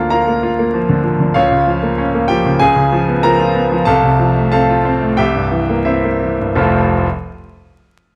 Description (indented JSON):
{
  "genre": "classical, virtuoso piano study",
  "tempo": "81-98 BPM",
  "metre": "4/4",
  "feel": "rubato",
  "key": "F major",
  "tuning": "A4 = 440 Hz",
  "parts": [
    { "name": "clear grand piano", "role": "solo", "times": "0.0-7.1 s", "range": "F1 to Bb5", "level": "-14 LUFS", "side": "equal", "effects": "none" }
  ],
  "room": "light reverb",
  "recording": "close, detailed microphones, vinyl crackle",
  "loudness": "-14 LUFS",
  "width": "mono",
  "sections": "0.0-6.6 A section; 6.6-8.2 B section",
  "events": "none",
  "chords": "0.0 Bb/D; 1.3 Bbm/Db; 2.6 Db7; 3.9 F/C; 5.2 C7; 6.6 F"
}